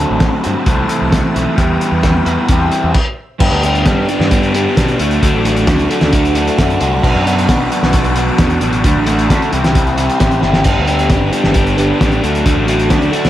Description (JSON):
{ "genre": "indie rock", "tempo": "132 BPM", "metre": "4/4", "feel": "straight", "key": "G major", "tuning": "A4 = 440 Hz", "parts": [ { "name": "string machine, violins", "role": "sustained chords", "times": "0.0-13.3 s", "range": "F#4 to E6", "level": "-27 LUFS", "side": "right 1 dB", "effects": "ensemble chorus, plate reverb" }, { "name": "crunchy overdriven guitar", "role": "riff", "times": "0.0-13.3 s", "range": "E3 to A4", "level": "-16 LUFS", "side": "left 4 dB", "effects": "phaser" }, { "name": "crunchy overdriven guitar", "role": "riff", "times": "0.0-13.3 s", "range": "G2 to F#4", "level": "-18 LUFS", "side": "right 7 dB", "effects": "lush chorus, slapback echo" }, { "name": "growling picked electric bass", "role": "bass", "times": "0.0-13.3 s", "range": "G1 to B2", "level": "-18 LUFS", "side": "equal", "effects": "overdrive" }, { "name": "cloth-damped thuddy drum kit", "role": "drums", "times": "0.2-13.3 s", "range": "crash cymbal, hi-hat, kick drum, snare drum", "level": "-15 LUFS", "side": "equal", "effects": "none" } ], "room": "light reverb", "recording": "none", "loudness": "-11 LUFS", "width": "side -13 dB against mid", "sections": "0.0-3.4 A section; 3.4-13.3 B section", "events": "stop 2.9-3.4; drum fill 10.4", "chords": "0.0 D7; 0.7 Am7/C; 1.6 Emadd9; 2.5 C/E; 3.4 G; 5.0 D; 7.0 Bm; 8.8 D; 9.5 C; 10.7 G; 12.2 D" }